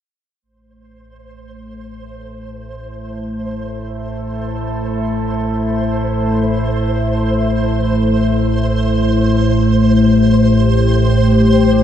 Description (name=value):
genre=dark ambient drone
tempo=free time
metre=none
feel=none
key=A minor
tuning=A4 = 442 Hz
part: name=deep dark ambient pad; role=sustained chords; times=1.7-11.8 s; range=A3 to A4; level=-16 LUFS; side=left 2 dB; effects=chorus, built-in reverb
part: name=deep rumbling drone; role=drone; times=1.9-11.8 s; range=A1 to A2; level=-18 LUFS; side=right 1 dB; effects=built-in reverb
part: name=flickering grainy texture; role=texture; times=1.3-11.8 s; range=C5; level=-23 LUFS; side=right 1 dB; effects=built-in reverb
room=wet spring reverb, RT60 2.5 s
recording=none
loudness=-13 LUFS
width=side -10 dB against mid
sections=0.4-11.8 A section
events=fade-in on synth drone 0.4-11.8; fade-in on ambient pad 0.4-11.8; fade-in on synth texture 0.4-11.8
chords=0.4 Am